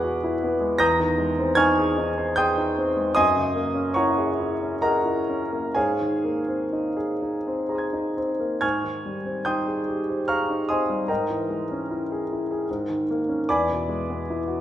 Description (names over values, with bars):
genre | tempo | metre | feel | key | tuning
classical, impressionist solo piano | 61-78 BPM | 3/4 | rubato | Ab major | A4 = 440 Hz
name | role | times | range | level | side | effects
clear concert grand piano | solo | 0.0-14.6 s | E2 to Bb6 | -22 LUFS | equal | none
room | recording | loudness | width
wet recital hall reverb, RT60 1.7 s | minimal, uncompressed stereo recording | -22 LUFS | side -11 dB against mid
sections
0.0-8.6 A section; 8.6-14.6 B section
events
none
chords
0.0 E9; 0.8 Abadd9/Fb; 3.2 Gb9; 5.8 Abadd9; 8.6 Abmaj7; 11.1 Dbm6/Ab; 12.7 Eb7sus4/Ab; 13.5 E7